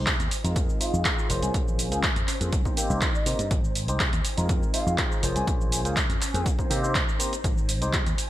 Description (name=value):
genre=filtered disco house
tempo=122 BPM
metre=4/4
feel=straight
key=Ab major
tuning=A4 = 441 Hz
part: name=barky tine electric piano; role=accompaniment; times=0.0-8.0 s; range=Ab3 to C5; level=-32 LUFS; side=equal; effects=phaser, sidechain pumping, low-pass filter
part: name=phased string machine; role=sustained chords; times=0.0-8.3 s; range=Db4 to Bb5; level=-37 LUFS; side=equal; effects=ensemble chorus, phaser, sidechain pumping, low-pass filter
part: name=dry thumbed slap bass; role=bass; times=0.0-8.2 s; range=F1 to C3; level=-29 LUFS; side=equal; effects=sidechain pumping, low-pass filter
part: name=electronic kick drum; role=drums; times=0.1-8.0 s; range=none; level=-27 LUFS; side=equal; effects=none
part: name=punchy analog drum machine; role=drums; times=0.1-8.3 s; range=handclaps, hi-hat, shaker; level=-28 LUFS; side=right 1 dB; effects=sidechain pumping on hats, sidechain pumping on cymbals, sidechain pumping on perc, gated reverb
part: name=breathy mellow silver concert flute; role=melody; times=0.8-6.5 s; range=Eb5 to Ab5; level=-35 LUFS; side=left 2 dB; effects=sidechain pumping, low-pass filter
room=little or no reverb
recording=bright 1980s-style digital production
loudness=-23 LUFS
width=side -14 dB against mid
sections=0.0-8.3 A section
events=filter sweep 0.0-8.3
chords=0.3 Fm7; 1.5 Bbm9; 2.5 Cm7; 3.5 Abmaj7; 4.2 Fm7; 5.5 Bbm9; 6.5 Cm7; 7.4 Abmaj7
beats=0.07 0.56 1.05 | 1.54 2.04 2.53 3.02 | 3.51 4.00 4.49 4.99 | 5.48 5.97 6.46 6.95 | 7.45 7.94